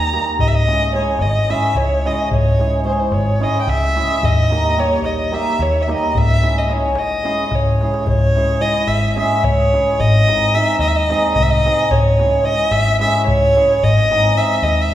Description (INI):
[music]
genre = balkan folk, Balkan wedding band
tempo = 219 BPM (eighths)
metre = 7/8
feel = straight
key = C# hungarian minor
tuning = A4 = 440 Hz
[part]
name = dark violin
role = melody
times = 0.0-14.9 s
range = B#4 to A#5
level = -17 LUFS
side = equal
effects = none
[part]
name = cimbalom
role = accompaniment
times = 0.0-14.9 s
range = G3 to G#4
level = -21 LUFS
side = right 1 dB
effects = none
[part]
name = vintage muted fingered electric bass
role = bass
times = 0.0-14.9 s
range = G#1 to D#2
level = -19 LUFS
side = equal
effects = none
[part]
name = darbuka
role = percussion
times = 0.4-14.9 s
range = none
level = -22 LUFS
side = left 1 dB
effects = none
[sound]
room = wet recital hall reverb, RT60 1.8 s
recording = recorded in a church or concert hall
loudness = -14 LUFS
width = side -12 dB against mid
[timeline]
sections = 0.0-8.1 A section; 8.1-14.9 B section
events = drum fill 7.7-8.1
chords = 0.4 C#m; 4.2 D#; 6.2 C#m; 10.0 G#; 11.9 C#m; 13.8 G#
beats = 0.11 | 0.39 0.67 0.94 1.22 1.49 1.77 2.04 | 2.32 2.59 2.87 3.14 3.42 3.69 3.96 | 4.24 4.51 4.79 5.06 5.34 5.61 5.88 | 6.16 6.43 6.71 6.98 7.26 7.53 7.80 | 8.08 8.35 8.62 8.90 9.17 9.45 9.72 | 9.99 10.27 10.54 10.82 11.09 11.36 11.64 | 11.91 12.19 12.46 12.73 13.01 13.28 13.55 | 13.83 14.10 14.38 14.65 14.93